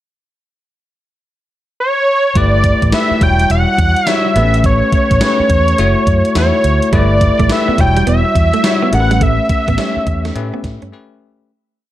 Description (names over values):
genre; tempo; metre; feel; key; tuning
R&B, new jack swing; 105 BPM; 4/4; swing 64% on 16ths; unclear; A4 = 440 Hz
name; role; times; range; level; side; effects
wide unison lead; melody; 1.8-10.9 s; C#5 to G5; -15 LUFS; right 1 dB; none
bell-like tine electric piano; accompaniment; 2.4-11.5 s; G3 to C#5; -18 LUFS; left 4 dB; fast stereo tremolo
vintage muted fingered electric bass; bass; 2.4-10.9 s; E1 to A2; -15 LUFS; equal; none
gated 80s digital drum machine; drums; 2.4-10.9 s; hi-hat, kick drum, snare drum; -17 LUFS; equal; gated reverb, gated reverb snare
direct-recorded clean electric guitar; riff; 6.9-10.9 s; G3 to C#4; -22 LUFS; right 7 dB; wide subtle chorus
room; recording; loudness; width
light reverb; dark, warm production; -10 LUFS; side -13 dB against mid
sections
0.1-2.4 pickup bar; 2.4-11.5 verse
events
fade-out 9.2-11.5; break 10.9-11.5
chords
0.1 N.C.; 2.4 G69; 3.2 Em69; 4.4 A9; 5.8 F#m7; 6.9 G69; 7.8 Em69; 8.9 A9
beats
| 0.07 0.64 1.21 1.78 | 2.35 2.93 3.50 4.07 | 4.64 5.21 5.78 6.36 | 6.93 7.50 8.07 8.64 | 9.21 9.78 10.36 10.93